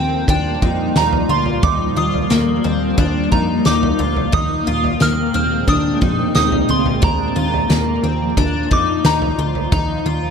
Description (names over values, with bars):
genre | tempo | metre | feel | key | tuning
dream pop | 89 BPM | 4/4 | straight | Eb major | A4 = 440 Hz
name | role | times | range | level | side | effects
soft synth bell | melody | 0.0-10.3 s | G5 to F6 | -22 LUFS | right 2 dB | chorus, phaser, dub echo
shimmering ambient pad | sustained chords | 0.0-10.3 s | Bb2 to D5 | -21 LUFS | equal | chorus, built-in reverb
picked twelve-string acoustic guitar | arpeggios | 0.0-10.3 s | Bb3 to F4 | -22 LUFS | left 4 dB | analog chorus, dub echo
plucky analog bass | bass | 0.0-10.3 s | D2 to F2 | -22 LUFS | equal | none
loose indie drum kit | drums | 0.3-9.9 s | kick drum, snare drum, toms | -19 LUFS | equal | none
room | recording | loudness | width
moderate spring reverb, RT60 1.9 s, small room ambience | echo-heavy mix, lossy compression artefacts | -14 LUFS | side -6 dB against mid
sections
0.0-10.3 A section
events
none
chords
0.0 Ebadd9; 4.3 Abadd9/Eb; 7.0 Bb/Eb; 9.7 Ebadd9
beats
0.28 0.96 | 1.63 2.31 2.98 3.65 | 4.33 5.00 5.68 6.35 | 7.03 7.70 8.37 9.05 | 9.72